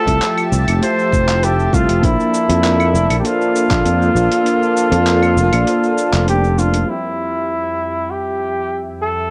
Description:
sunset chillout; 99 BPM; 4/4; straight; F major; A4 = 440 Hz
warm flugelhorn; melody; 0.0-9.3 s; E4 to C5; -20 LUFS; equal; analog delay, plate reverb
soft electric-piano-like synth keys; accompaniment; 0.0-9.3 s; F3 to C5; -26 LUFS; equal; chorus, low-pass filter, cassette tape, plate reverb
lush unison pad; sustained chords; 0.0-9.3 s; F2 to A5; -25 LUFS; equal; chorus, vintage 12-bit sampler grit, cassette tape, plate reverb
sustaining fretless electric bass; bass; 0.1-6.8 s; F1 to F2; -18 LUFS; equal
dusty soul sampler-style drum kit; drums; 0.1-9.3 s; cabasa, claves, crash cymbal, handclaps, hi-hat; -27 LUFS; equal; low-pass filter on hats, cassette tape, low-pass filter on perc, low-pass filter on snare, low-pass filter on cymbals
electronic kick drum; drums; 0.1-3.8 s; -22 LUFS; equal; cassette tape
moderate booth ambience, RT60 0.2 s; home recording on cassette; -16 LUFS; mono
0.0-6.9 A section; 6.9-9.3 B section
kick drops out 4.5-6.9
0.0 Fmaj9; 2.0 Bbmaj9; 6.9 Fmaj7sus2

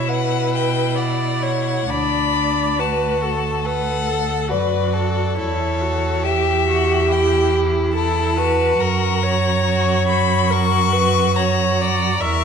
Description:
classical, slow romantic movement for string quartet; 70 BPM; 4/4; rubato; A4 = 440 Hz
rich violin; melody; 0.0-12.4 s; C#5 to C#6; -22 LUFS; left 10 dB
rich violin; second line; 0.0-12.4 s; D4 to B4; -24 LUFS; left 4 dB
rich viola; accompaniment; 0.0-12.4 s; E4 to E5; -22 LUFS; right 2 dB
clear cello; bass; 0.0-12.4 s; D2 to B2; -21 LUFS; right 4 dB
moderate scoring stage reverb, RT60 1.7 s; dark, warm production; -16 LUFS; side -6 dB against mid
0.0-12.4 A section
0.0 B5; 1.9 D; 5.4 C#dim/E; 8.8 F#

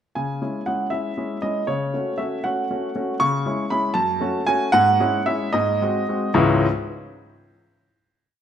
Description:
classical-period piano sonatina; 71-80 BPM (dotted quarters); 6/8; straight; C# minor; A4 = 440 Hz
clear grand piano; solo; 0.2-6.7 s; C#2 to C#6; -19 LUFS; equal
moderate recital hall reverb, RT60 1.4 s; -19 LUFS; side -9 dB against mid
0.2-6.4 A section; 6.4-8.0 final chord
0.2 C#m; 1.7 F#m/C#; 3.2 C#m; 4.0 F#m; 4.7 C#m/G#; 5.5 G#7; 6.4 C#m

